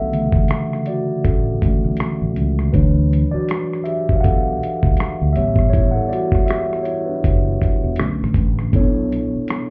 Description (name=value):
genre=R&B, neo-soul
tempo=80 BPM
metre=4/4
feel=swing 58% on 16ths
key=B minor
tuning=A4 = 440 Hz
part: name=mellow tine electric piano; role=accompaniment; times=0.0-9.7 s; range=B2 to F#5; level=-23 LUFS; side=equal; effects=none
part: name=fretless electric bass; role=bass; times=0.0-9.4 s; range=E1 to D2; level=-22 LUFS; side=equal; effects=subtle chorus
part: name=dusty soul sampler-style drum kit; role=drums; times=0.1-9.7 s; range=hi-hat, kick drum, rim click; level=-21 LUFS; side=equal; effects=none
room=light reverb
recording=heard muffled through a wall, club reverb, EQ, nothing above 8.0 kHz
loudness=-18 LUFS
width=mono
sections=0.0-8.7 A section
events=tine electric piano solo 0.0-8.7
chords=0.0 Bm11; 2.7 Dmaj9; 5.4 A13; 8.0 Bm9; 8.7 Bm11